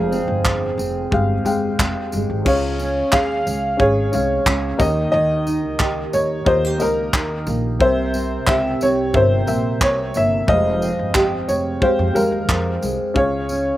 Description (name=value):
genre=acoustic pop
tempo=90 BPM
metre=4/4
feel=straight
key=unclear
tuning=A4 = 437 Hz
part: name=clear upright piano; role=melody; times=0.0-13.8 s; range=Ab4 to F5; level=-21 LUFS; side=equal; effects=slapback echo
part: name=felt-muted upright piano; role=accompaniment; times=0.0-13.8 s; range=G3 to G5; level=-25 LUFS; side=left 3 dB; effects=slapback echo
part: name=nylon-string guitar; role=accompaniment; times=0.0-13.8 s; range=F2 to Ab4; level=-23 LUFS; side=right 2 dB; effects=double-tracked left and right, slapback echo
part: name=upright bass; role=bass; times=0.0-13.7 s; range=F1 to F2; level=-24 LUFS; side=equal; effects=none
part: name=modern studio drum kit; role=drums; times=0.1-13.6 s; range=crash cymbal, handclaps, kick drum, tambourine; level=-22 LUFS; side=equal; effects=none
room=little or no reverb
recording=recorded outdoors, with no room sound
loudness=-16 LUFS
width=side -14 dB against mid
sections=0.0-2.5 A section; 2.5-13.8 A section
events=none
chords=0.0 Fmadd9; 2.5 Db; 4.8 Eb; 7.8 C7; 10.5 Fmadd9; 13.2 Db